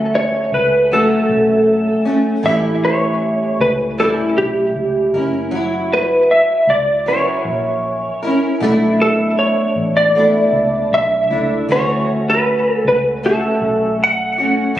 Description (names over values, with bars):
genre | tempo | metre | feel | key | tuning
indie pop, bedroom pop | 78 BPM | 4/4 | straight | D major | A4 = 439 Hz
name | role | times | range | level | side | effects
fingerpicked steel-string acoustic guitar | accompaniment | 0.0-14.8 s | A2 to A#4 | -18 LUFS | equal | wide subtle chorus, vibrato effect
vintage muted fingered electric bass | bass | 0.0-14.8 s | F#1 to D2 | -26 LUFS | equal | none
clean lap steel guitar | melody | 0.2-14.8 s | G4 to F#5 | -15 LUFS | equal | ensemble chorus, digital delay
room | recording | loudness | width
moderate echo chamber reverb, RT60 1.7 s | recorded on a phone in the room, club reverb, compression | -13 LUFS | side -12 dB against mid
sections
0.0-14.8 A section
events
none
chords
0.0 Dmaj7; 2.4 A7; 5.1 F#7; 8.6 Bm11; 11.7 Dmaj7